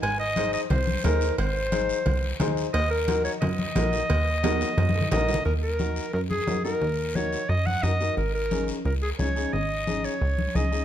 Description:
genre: latin, cumbia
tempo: 177 BPM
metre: 4/4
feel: straight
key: Eb dorian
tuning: A4 = 441 Hz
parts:
  - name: clear clarinet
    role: melody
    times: 0.0-10.8 s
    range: Ab4 to Ab5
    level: -28 LUFS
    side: equal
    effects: none
  - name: plucky analog bass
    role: bass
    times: 0.0-10.8 s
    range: Ab1 to Gb2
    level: -26 LUFS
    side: right 1 dB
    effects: none
  - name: cowbell and timbales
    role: percussion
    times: 0.0-5.4 s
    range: none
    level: -34 LUFS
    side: right 6 dB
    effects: none
  - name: guiro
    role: percussion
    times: 0.0-10.8 s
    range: none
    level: -40 LUFS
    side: left 5 dB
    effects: none
  - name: warm upright piano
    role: accompaniment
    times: 0.4-10.8 s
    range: Db4 to C5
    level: -32 LUFS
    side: left 4 dB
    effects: none
  - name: congas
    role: percussion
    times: 0.4-10.7 s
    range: none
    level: -31 LUFS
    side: left 2 dB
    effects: none
room: moderate large studio reverb, RT60 1.4 s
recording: dark, warm production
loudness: -23 LUFS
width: side -10 dB against mid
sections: 0.0-5.5 A section; 5.5-10.8 B section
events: drum fill 4.4-5.5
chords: 0.0 Ab; 2.7 Ebm; 8.2 Absus4

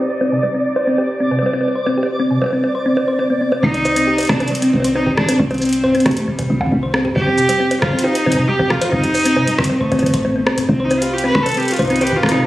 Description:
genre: IDM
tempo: 136 BPM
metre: 4/4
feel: straight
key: C melodic minor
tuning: A4 = 440 Hz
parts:
  - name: thumb-piano-like synth pluck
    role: arpeggios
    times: 0.0-12.4 s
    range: C3 to C5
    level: -19 LUFS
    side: left 1 dB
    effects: chorus, tape echo
  - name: booming analog drum machine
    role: drums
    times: 0.0-12.5 s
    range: bongos, hi-hat, rim click, shaker, toms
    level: -22 LUFS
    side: right 1 dB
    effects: tape echo
  - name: twinkling granular texture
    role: texture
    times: 0.0-3.6, 10.9-12.5 s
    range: B4 to D5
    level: -24 LUFS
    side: right 1 dB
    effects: built-in reverb, sidechain pumping
  - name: dark cello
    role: melody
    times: 3.6-12.5 s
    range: G3 to B4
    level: -18 LUFS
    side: equal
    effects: digital delay
  - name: woody FM bass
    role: bass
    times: 3.6-12.3 s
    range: Eb1 to Eb2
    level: -21 LUFS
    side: equal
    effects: none
  - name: electronic kick drum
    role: drums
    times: 3.6-12.2 s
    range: none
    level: -24 LUFS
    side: equal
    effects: none
room: moderate digital room reverb, RT60 0.9 s, digital ambience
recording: recorded on a phone in the room, studio reverb, low-pass filter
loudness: -14 LUFS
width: side -15 dB against mid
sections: 0.0-3.6 A section; 3.6-12.5 B section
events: filter sweep on synth arpeggio sound 0.0-3.6; filter sweep 0.0-3.6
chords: 0.1 Csus2; 3.6 Cm; 7.2 F9; 10.7 Cm

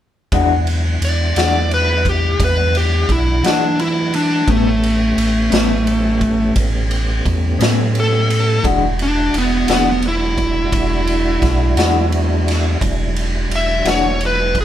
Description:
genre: slow blues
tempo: 58 BPM (dotted quarters)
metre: 12/8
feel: straight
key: E mixolydian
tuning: A4 = 441 Hz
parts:
  - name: mellow electric guitar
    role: accompaniment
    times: 0.3-14.1 s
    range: A2 to F#4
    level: -18 LUFS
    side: left 5 dB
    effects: tremolo
  - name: tonewheel organ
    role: sustained chords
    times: 0.3-14.6 s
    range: F#3 to F#5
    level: -26 LUFS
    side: right 2 dB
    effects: slow rotary speaker, chorus vibrato
  - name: sub bass with octave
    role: bass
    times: 0.3-14.6 s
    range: E1 to E3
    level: -18 LUFS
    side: equal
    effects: none
  - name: raw garage drum kit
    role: drums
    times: 0.3-14.6 s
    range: kick drum, ride cymbal, snare drum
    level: -21 LUFS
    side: right 1 dB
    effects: none
  - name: smooth overdriven lead guitar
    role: melody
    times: 1.0-14.6 s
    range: A3 to E5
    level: -18 LUFS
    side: equal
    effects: none
room: light reverb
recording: band playing live in one room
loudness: -14 LUFS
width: side -11 dB against mid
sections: 0.3-14.6 A section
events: lead electric guitar solo 0.3-14.6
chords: 0.3 E9; 4.5 A9; 8.6 E9

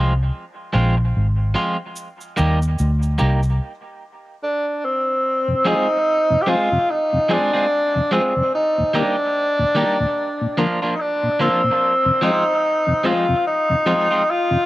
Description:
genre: dub reggae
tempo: 73 BPM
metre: 4/4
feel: swing 59% on 16ths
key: F dorian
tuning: A4 = 441 Hz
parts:
  - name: electric guitar at the edge of break-up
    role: accompaniment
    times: 0.0-14.2 s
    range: F3 to Ab4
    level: -24 LUFS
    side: right 1 dB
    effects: cassette tape, dub echo
  - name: vintage muted fingered electric bass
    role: bass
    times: 0.0-3.6 s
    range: Ab1 to Eb2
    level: -17 LUFS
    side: equal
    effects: none
  - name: cabasa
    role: percussion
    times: 2.0-3.6 s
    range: none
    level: -39 LUFS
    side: right 3 dB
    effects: none
  - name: warm tenor saxophone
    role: melody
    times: 4.4-14.7 s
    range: C4 to G4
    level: -18 LUFS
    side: equal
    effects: dub echo
  - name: mellow tonewheel organ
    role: accompaniment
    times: 5.5-14.6 s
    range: Eb2 to C4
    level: -23 LUFS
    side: left 1 dB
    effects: chorus vibrato, slow rotary speaker, cassette tape
room: moderate small room reverb, RT60 0.5 s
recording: home recording on cassette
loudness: -16 LUFS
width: side -16 dB against mid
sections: 0.0-5.2 A section; 5.2-14.7 B section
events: break 0.0-5.2; stop 3.6-5.2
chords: 0.0 Fm; 2.0 Eb; 3.6 N.C.; 5.2 Fm; 8.5 Eb; 10.2 Bb; 11.8 Fm

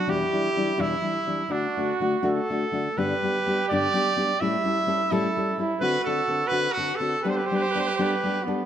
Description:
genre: mexican folk, mariachi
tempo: 84 BPM (dotted quarters)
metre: 6/8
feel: rubato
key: G major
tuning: A4 = 440 Hz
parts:
  - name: clear trumpet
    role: melody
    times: 0.0-8.4 s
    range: D4 to E5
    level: -26 LUFS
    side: right 2 dB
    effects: none
  - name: dark trumpet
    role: second line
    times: 0.0-8.7 s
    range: B3 to G4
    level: -29 LUFS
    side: right 5 dB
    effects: none
  - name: nylon-string guitar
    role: accompaniment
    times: 0.1-8.6 s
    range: E2 to A4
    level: -27 LUFS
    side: left 3 dB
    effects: none
room: moderate concert hall reverb, RT60 2.0 s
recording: none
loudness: -22 LUFS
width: side -10 dB against mid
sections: 0.0-8.7 A section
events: none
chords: 0.1 Em7; 1.5 D; 3.0 G; 4.4 A7; 5.8 D7; 7.2 Gadd9

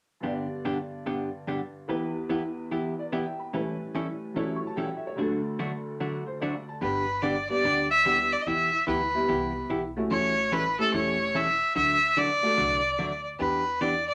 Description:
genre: country, western swing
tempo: 146 BPM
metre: 4/4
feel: swing 65% on 8ths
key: G major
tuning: A4 = 438 Hz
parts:
  - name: clear upright piano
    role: accompaniment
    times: 0.2-12.6 s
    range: D2 to C#6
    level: -35 LUFS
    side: equal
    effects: none
  - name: hollow-body jazz guitar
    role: accompaniment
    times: 0.2-13.9 s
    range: G2 to A4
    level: -33 LUFS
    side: equal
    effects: none
  - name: clear fiddle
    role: melody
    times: 6.8-14.1 s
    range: A4 to E5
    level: -26 LUFS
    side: equal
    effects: none
  - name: upright bass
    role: bass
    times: 6.8-14.1 s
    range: E1 to E2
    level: -44 LUFS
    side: equal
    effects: none
room: wet studio ambience, RT60 0.5 s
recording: none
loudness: -27 LUFS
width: mono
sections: 0.2-6.8 A section; 6.8-14.1 B section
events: none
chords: 0.2 G; 1.9 Em; 3.5 A7; 5.2 D; 6.8 G; 8.5 Em; 10.1 A7; 11.8 D; 13.4 Em7

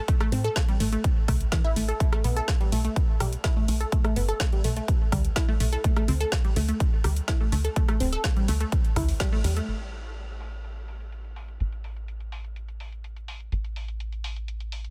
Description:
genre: progressive house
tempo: 125 BPM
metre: 4/4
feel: straight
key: unclear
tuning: A4 = 437 Hz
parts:
  - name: unison pluck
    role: arpeggios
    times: 0.0-9.7 s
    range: E3 to A4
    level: -33 LUFS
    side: equal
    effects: sidechain pumping, dub echo
  - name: deep house drum kit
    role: drums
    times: 0.1-14.9 s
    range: crash cymbal, hi-hat, rim click, snare drum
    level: -37 LUFS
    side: equal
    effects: low-pass filter on hats, soft clipping on snare, low-pass filter on snare, low-pass filter on cymbals
  - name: electronic kick drum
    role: drums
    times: 0.1-9.3 s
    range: none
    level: -26 LUFS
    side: equal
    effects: none
  - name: plucky analog bass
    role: bass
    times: 0.3-14.9 s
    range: D1 to A2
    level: -31 LUFS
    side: equal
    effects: sidechain pumping
room: little or no reverb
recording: dense, heavily limited modern master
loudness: -26 LUFS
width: mono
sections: 0.0-9.7 A section; 9.7-14.9 B section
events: band accent 9.2; filter sweep on drum 9.7-14.9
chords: 0.0 Am; 2.0 Gadd9/B; 5.8 D5; 9.7 N.C.

